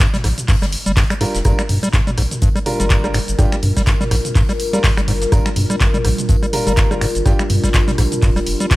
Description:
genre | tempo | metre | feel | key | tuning
acid house | 124 BPM | 4/4 | swing 57% on 16ths | G minor | A4 = 440 Hz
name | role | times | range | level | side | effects
overdriven acid bass | riff | 0.0-8.8 s | G2 to G3 | -21 LUFS | equal | analog delay
electronic kick drum | drums | 0.0-8.8 s | none | -17 LUFS | equal | studio reverb
punchy analog drum machine | drums | 0.0-8.8 s | finger snaps, handclaps, hi-hat, rim click, shaker, toms | -22 LUFS | equal | studio reverb
soft brush drum kit | drums | 0.0-8.8 s | hi-hat, snare drum, tambourine | -32 LUFS | left 2 dB | high-pass filter on hats, studio reverb, high-pass filter on snare, high-pass filter on perc, high-pass filter on room
round analog bass | bass | 0.2-8.6 s | D1 to G2 | -20 LUFS | equal | sidechain pumping
warm grand piano | stabs | 1.2-7.4 s | G3 to Bb4 | -24 LUFS | right 2 dB | analog delay
dark analog pad | sustained chords | 2.3-8.8 s | G3 to Bb4 | -24 LUFS | left 2 dB | chorus, phaser, sidechain pumping
room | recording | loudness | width
small room ambience | none | -14 LUFS | side -18 dB against mid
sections
0.0-8.8 A section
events
none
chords
0.0 Gm7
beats
0.00 0.48 0.97 | 1.45 1.93 2.42 2.90 | 3.39 3.87 4.35 4.84 | 5.32 5.80 6.29 6.77 | 7.26 7.74 8.22 8.71

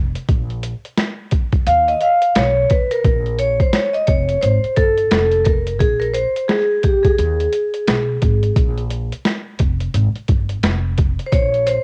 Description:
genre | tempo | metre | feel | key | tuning
hip hop, jazz-hop | 87 BPM | 4/4 | swing 60% on 16ths | Bb dorian | A4 = 440 Hz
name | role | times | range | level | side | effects
upright bass | bass | 0.0-11.8 s | F1 to Eb2 | -23 LUFS | equal | none
boom bap sampler-style drum kit | drums | 0.2-11.8 s | hi-hat, kick drum, snare drum | -20 LUFS | equal | overdrive, cassette tape
vibraphone with medium hard mallets | accompaniment | 1.7-11.8 s | G4 to F5 | -19 LUFS | equal | none
room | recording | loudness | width
studio reverb | home recording on cassette | -17 LUFS | mono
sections
0.0-11.8 A section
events
vibraphone solo 0.0-11.8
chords
0.0 N.C.; 1.7 Ebsus2; 2.4 Bsus2; 3.0 Bb5; 4.4 Abmaj7; 5.1 F; 5.8 Abmaj9/Bb; 7.2 Ebsus4; 7.9 Abm; 8.6 Bb5; 9.9 N.C.; 10.6 F5; 11.3 Bbmadd9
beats
| 0.29 0.98 1.67 2.36 | 3.05 3.74 4.43 5.12 | 5.81 6.50 7.18 7.88 | 8.56 9.25 9.94 10.63 | 11.32

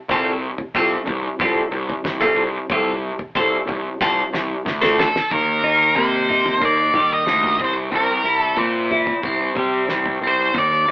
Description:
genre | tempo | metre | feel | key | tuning
psychedelic rock | 92 BPM | 4/4 | straight | unclear | A4 = 436 Hz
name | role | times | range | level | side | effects
twelve-string electric guitar | riff | 0.1-10.9 s | C3 to A4 | -19 LUFS | equal | phaser
fuzz picked electric bass | bass | 0.1-10.9 s | C2 to Eb3 | -22 LUFS | equal | overdrive
cloth-damped thuddy drum kit | drums | 0.1-10.7 s | kick drum, snare drum, toms | -27 LUFS | equal | none
octave-fuzz lead guitar | melody | 5.0-10.9 s | A4 to Eb5 | -18 LUFS | equal | distortion
room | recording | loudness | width
moderate studio reverb, RT60 0.6 s | band playing live in one room, telephone sound | -16 LUFS | side -21 dB against mid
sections
0.0-5.3 A section; 5.3-10.9 B section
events
drum fill 4.0-5.3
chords
0.0 Fadd9/C; 5.3 Eb; 7.6 C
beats
| 0.09 0.74 1.40 2.05 | 2.70 3.35 4.00 4.65 | 5.31 5.96 6.61 7.27 | 7.92 8.58 9.23 9.88 | 10.54

